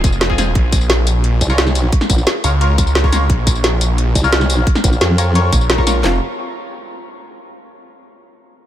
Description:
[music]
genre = dark technical drum and bass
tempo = 175 BPM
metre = 4/4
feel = straight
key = F minor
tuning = A4 = 442 Hz
[part]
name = band-passed chord stab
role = stabs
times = 0.0-6.2 s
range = A3 to Db5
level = -22 LUFS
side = left 2 dB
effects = phaser, lush chorus, tape echo
[part]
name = snarling distorted saw bass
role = bass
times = 0.0-6.2 s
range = F1 to Db2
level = -16 LUFS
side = equal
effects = distortion, overdrive
[part]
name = drum and bass drum kit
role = drums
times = 0.0-6.1 s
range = handclaps, kick drum, snare drum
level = -16 LUFS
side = equal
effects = none
[part]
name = drum and bass drum kit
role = drums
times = 0.0-5.9 s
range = hi-hat, snare drum, tambourine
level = -18 LUFS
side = equal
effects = none
[part]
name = formant-sweep wobble bass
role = bass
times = 1.4-5.5 s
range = Bb1 to F2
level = -15 LUFS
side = equal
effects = chorus
[sound]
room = light reverb, digital ambience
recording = none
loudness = -12 LUFS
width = side -12 dB against mid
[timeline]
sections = 0.0-6.0 A section; 6.0-7.4 B section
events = drop 0.0-6.0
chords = 0.0 Fm; 0.6 Bbm; 6.0 F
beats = 0.21 | 0.55 0.90 1.24 1.58 | 1.93 2.27 2.61 2.95 | 3.30 3.64 3.98 4.33 | 4.67 5.01 5.35 5.70 | 6.04

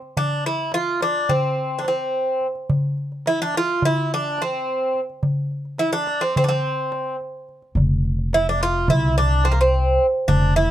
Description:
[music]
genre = Turkish makam ensemble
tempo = 213 BPM (eighths)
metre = 9/8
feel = straight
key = unclear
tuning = A4 = 439 Hz
[part]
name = darbuka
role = percussion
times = 0.0-10.6 s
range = none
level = -23 LUFS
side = equal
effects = none
[part]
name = Greek bouzouki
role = melody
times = 0.2-10.7 s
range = Bb3 to F4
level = -20 LUFS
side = right 1 dB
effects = none
[part]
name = upright bass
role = bass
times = 7.8-10.7 s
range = F1 to C2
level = -20 LUFS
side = equal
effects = none
[sound]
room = light reverb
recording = dark, warm production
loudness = -19 LUFS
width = side -12 dB against mid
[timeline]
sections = 0.0-10.7 A section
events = none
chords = none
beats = | 0.17 0.45 0.73 1.01 1.29 1.58 1.86 2.14 2.42 | 2.70 2.98 3.26 3.54 3.83 4.11 4.39 4.67 4.95 | 5.23 5.51 5.79 6.08 6.36 6.64 6.92 7.20 7.48 | 7.76 8.04 8.32 8.61 8.88 9.17 9.45 9.73 10.01 | 10.29 10.57

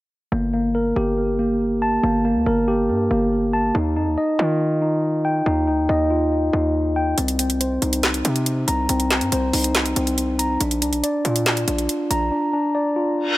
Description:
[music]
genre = hip hop, trap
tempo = 140 BPM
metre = 4/4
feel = half-time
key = G minor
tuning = A4 = 439 Hz
[part]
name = mellow tine electric piano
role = arpeggios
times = 0.3-13.4 s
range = Bb3 to Bb5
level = -20 LUFS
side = equal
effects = low-pass filter, digital delay
[part]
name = hard-hitting 808-style bass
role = bass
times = 0.3-12.3 s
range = G1 to Eb3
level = -24 LUFS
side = equal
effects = none
[part]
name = trap drum kit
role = drums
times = 7.2-12.2 s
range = handclaps, hi-hat, snare drum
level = -22 LUFS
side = right 1 dB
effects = overdrive
[part]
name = reverse cymbal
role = sound effects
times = 13.3-13.4 s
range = none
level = -19 LUFS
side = left 1 dB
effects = none
[sound]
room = light reverb, digital ambience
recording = none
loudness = -18 LUFS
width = side -17 dB against mid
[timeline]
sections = 0.3-13.4 A section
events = reverse cymbal 13.3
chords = 0.3 Gmadd9; 3.7 Ebadd9; 7.2 Cm7; 10.6 Bb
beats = | 0.32 0.75 1.18 1.61 | 2.03 2.46 2.89 3.32 | 3.75 4.18 4.61 5.03 | 5.46 5.89 6.32 6.75 | 7.18 7.61 8.03 8.46 | 8.89 9.32 9.75 10.18 | 10.61 11.03 11.46 11.89 | 12.32 12.75 13.18

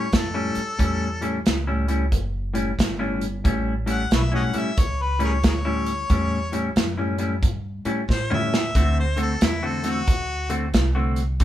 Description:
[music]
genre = electric blues shuffle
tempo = 90 BPM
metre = 4/4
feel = swing 64% on 8ths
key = A mixolydian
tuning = A4 = 440 Hz
[part]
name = bright harmonica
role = melody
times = 0.0-10.5 s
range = E4 to F#5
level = -28 LUFS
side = left 2 dB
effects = overdrive
[part]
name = clean electric guitar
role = riff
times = 0.0-11.4 s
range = A2 to F#4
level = -26 LUFS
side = left 1 dB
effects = none
[part]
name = upright bass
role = bass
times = 0.1-11.4 s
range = F#1 to A2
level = -26 LUFS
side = equal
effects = none
[part]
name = natural country drum kit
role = drums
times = 0.1-11.4 s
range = hi-hat, kick drum, snare drum, toms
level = -22 LUFS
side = equal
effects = none
[sound]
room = light reverb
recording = band playing live in one room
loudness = -20 LUFS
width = side -12 dB against mid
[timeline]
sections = 0.0-11.4 A section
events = harmonica solo 0.0-11.4; drum fill 8.1-8.8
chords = 0.0 A7; 8.8 D7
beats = 0.14 | 0.80 1.46 2.13 2.79 | 3.45 4.12 4.78 5.44 | 6.10 6.77 7.43 8.09 | 8.76 9.42 10.08 10.74 | 11.41

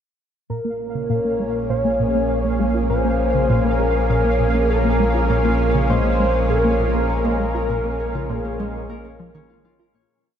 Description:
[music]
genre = ambient, sequencer-driven space music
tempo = 100 BPM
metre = 4/4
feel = straight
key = Bb minor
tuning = A4 = 438 Hz
[part]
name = pulse-width lead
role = melody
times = 0.5-9.5 s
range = Bb4 to Db5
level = -23 LUFS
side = left 1 dB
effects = chorus, ping-pong delay
[part]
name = lush unison pad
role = sustained chords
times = 0.8-10.1 s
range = Bb2 to Ab4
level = -24 LUFS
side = right 1 dB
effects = chorus
[part]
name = tight sequenced synth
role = riff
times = 0.5-10.0 s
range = Bb2 to F4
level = -25 LUFS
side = left 1 dB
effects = chorus, ping-pong delay
[part]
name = round analog bass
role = bass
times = 0.5-10.1 s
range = Bb1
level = -23 LUFS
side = equal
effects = none
[part]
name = pulsing gated texture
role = texture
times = 0.7-10.1 s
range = F5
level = -30 LUFS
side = right 4 dB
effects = chorus, built-in reverb
[part]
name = concert harp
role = arpeggios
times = 5.3-10.4 s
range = Ab3 to Db5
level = -29 LUFS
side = moving between left 6 dB and right 1 dB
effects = auto-pan, ping-pong delay
[sound]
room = moderate huge ambient reverb, RT60 7.8 s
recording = in a vast, echoing space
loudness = -17 LUFS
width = side -8 dB against mid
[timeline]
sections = 0.5-10.1 A section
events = filter sweep on synth arpeggio sound 0.5-10.1; fade-out 6.9-10.1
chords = 0.5 Bbm7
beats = | 0.50 1.10 1.70 2.30 | 2.90 3.50 4.10 4.70 | 5.30 5.90 6.50 7.10 | 7.70 8.30 8.90 9.50

